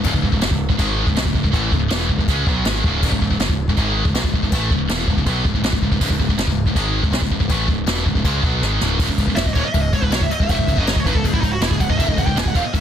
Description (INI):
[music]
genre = heavy metal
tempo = 161 BPM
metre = 4/4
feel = straight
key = C# minor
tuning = A4 = 440 Hz
[part]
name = high-gain distorted guitar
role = riff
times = 0.0-12.8 s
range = C#2 to C#4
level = -23 LUFS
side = right 11 dB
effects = distortion
[part]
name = scooped high-gain guitar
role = riff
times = 0.0-12.8 s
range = C#2 to C#4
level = -24 LUFS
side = left 12 dB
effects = distortion
[part]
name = growling picked electric bass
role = bass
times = 0.0-12.8 s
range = C#1 to C#2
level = -23 LUFS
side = equal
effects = overdrive
[part]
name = jazz brush drum kit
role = drums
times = 0.0-12.8 s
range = china cymbal, crash cymbal, kick drum, snare drum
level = -20 LUFS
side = equal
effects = none
[part]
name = high-gain lead guitar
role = melody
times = 9.4-12.8 s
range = D#4 to G#5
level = -23 LUFS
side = right 2 dB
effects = distortion, ping-pong delay
[sound]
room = small room ambience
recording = dense, heavily limited modern master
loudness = -16 LUFS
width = side -9 dB against mid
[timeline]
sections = 0.0-9.0 A section; 9.0-12.8 B section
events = drum fill 8.6-9.0; lead electric guitar solo 9.0-12.8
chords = 0.0 C#m